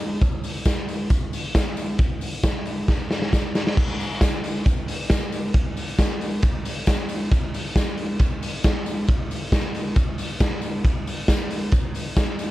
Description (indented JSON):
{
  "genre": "indie pop",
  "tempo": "136 BPM",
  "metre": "4/4",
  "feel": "straight",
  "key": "none",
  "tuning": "none",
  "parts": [
    { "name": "raw garage drum kit", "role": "drums", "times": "0.0-12.5 s", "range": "crash cymbal, hi-hat, kick drum, ride cymbal, snare drum", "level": "-21 LUFS", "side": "equal", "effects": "none" },
    { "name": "tambourine", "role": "percussion", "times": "0.2-12.5 s", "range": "none", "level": "-42 LUFS", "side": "left 6 dB", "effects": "none" }
  ],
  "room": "little or no reverb",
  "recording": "dark, warm production",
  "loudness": "-21 LUFS",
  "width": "side -16 dB against mid",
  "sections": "0.0-3.8 A section; 3.8-12.5 A section",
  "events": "drum fill 2.9-3.8",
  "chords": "none",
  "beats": "| 0.21 0.66 1.10 1.55 | 1.99 2.44 2.88 3.33 | 3.77 4.22 4.66 5.10 | 5.55 5.99 6.43 6.88 | 7.32 7.76 8.20 8.64 | 9.08 9.53 9.97 10.41 | 10.85 11.29 11.73 12.17"
}